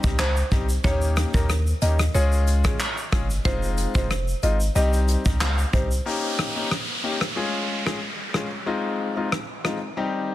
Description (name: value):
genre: dancehall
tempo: 92 BPM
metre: 4/4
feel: straight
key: F minor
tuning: A4 = 440 Hz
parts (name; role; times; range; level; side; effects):
- clear concert grand piano; accompaniment; 0.0-10.3 s; G3 to Ab4; -28 LUFS; left 4 dB; none
- punchy sub bass; bass; 0.0-6.0 s; F1 to Eb2; -22 LUFS; equal; none
- soft brush drum kit; drums; 0.0-9.8 s; handclaps, hi-hat, kick drum, rim click, shaker; -25 LUFS; equal; soft clipping on snare
- buzzing marimba with medium mallets; melody; 0.2-5.9 s; Bb4 to Eb5; -31 LUFS; right 1 dB; tape echo
- downlifter; sound effects; 6.1-10.3 s; none; -29 LUFS; right 1 dB; none
room: small room ambience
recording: dense, heavily limited modern master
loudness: -21 LUFS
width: side -14 dB against mid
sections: 0.0-6.1 A section; 6.1-10.3 B section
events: none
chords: 0.0 Cm; 0.8 Eb7; 2.1 Db; 3.5 Fm7; 4.8 Cm; 6.1 Eb7; 7.4 Db; 8.7 Fm7